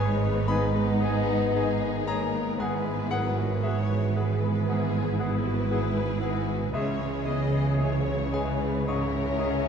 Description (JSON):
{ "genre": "cinematic", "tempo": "57 BPM", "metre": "4/4", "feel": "rubato", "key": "unclear", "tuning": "A4 = 439 Hz", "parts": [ { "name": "muted symphonic violin section", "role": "melody", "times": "0.0-9.7 s", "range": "G#4 to D#5", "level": "-38 LUFS", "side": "left 6 dB", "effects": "none" }, { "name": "bright clarinet", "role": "second line", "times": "0.0-9.6 s", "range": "G#4", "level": "-40 LUFS", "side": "left 4 dB", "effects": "none" }, { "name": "large flute ensemble", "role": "second line", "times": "0.0-9.7 s", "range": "G#4 to E5", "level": "-38 LUFS", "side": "left 1 dB", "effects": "none" }, { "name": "mellow cor anglais", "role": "second line", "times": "0.0-9.5 s", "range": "D#5 to G#5", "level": "-42 LUFS", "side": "right 4 dB", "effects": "none" }, { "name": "muted symphonic violin section", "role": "second line", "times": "0.0-9.7 s", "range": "D#4 to C#5", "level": "-38 LUFS", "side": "left 4 dB", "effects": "none" }, { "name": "clear concert grand piano", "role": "accompaniment", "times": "0.0-9.7 s", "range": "C#2 to C#6", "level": "-33 LUFS", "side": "left 1 dB", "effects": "none" }, { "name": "muted symphonic viola section", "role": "accompaniment", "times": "0.0-9.7 s", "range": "D#3 to E4", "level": "-35 LUFS", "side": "equal", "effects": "none" }, { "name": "mellow French horn section", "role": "sustained chords", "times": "0.0-9.7 s", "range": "E3 to C#4", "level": "-33 LUFS", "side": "left 6 dB", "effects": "none" }, { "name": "muted symphonic cello section", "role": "bass", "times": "0.0-9.7 s", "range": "G#2 to C#3", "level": "-30 LUFS", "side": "right 2 dB", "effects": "none" }, { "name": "muted symphonic double bass section", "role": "bass", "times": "0.0-9.7 s", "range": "G#1 to C#2", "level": "-30 LUFS", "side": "right 4 dB", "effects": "none" } ], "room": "moderate scoring stage reverb, RT60 2.1 s", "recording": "dark, warm production, nothing above 10.5 kHz", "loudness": "-24 LUFS", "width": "side -7 dB against mid", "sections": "0.0-9.7 A section", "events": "none", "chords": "0.0 G#m; 2.6 Eadd9/G#; 6.7 C#madd9", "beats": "0.48 1.53 | 2.58 3.63 4.68 5.71 | 6.74 7.78 8.87" }